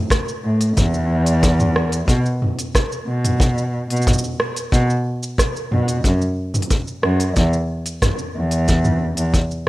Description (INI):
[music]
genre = folktronica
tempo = 91 BPM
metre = 4/4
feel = straight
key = unclear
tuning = A4 = 440 Hz
[part]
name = kick drum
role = drums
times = 0.1-9.5 s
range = none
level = -19 LUFS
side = equal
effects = none
[part]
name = organic electronic drum kit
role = drums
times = 0.1-9.6 s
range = cabasa, hi-hat, rim click, toms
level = -22 LUFS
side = right 1 dB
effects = none
[part]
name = dark cello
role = bass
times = 0.4-9.3 s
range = E2 to B2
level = -19 LUFS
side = equal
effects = none
[sound]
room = little or no reverb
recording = rough home demo mix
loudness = -16 LUFS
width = side -18 dB against mid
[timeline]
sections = 0.0-9.7 A section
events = none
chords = none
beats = 0.11 0.77 1.43 | 2.09 2.75 3.41 4.07 | 4.72 5.38 6.04 6.70 | 7.36 8.02 8.68 9.34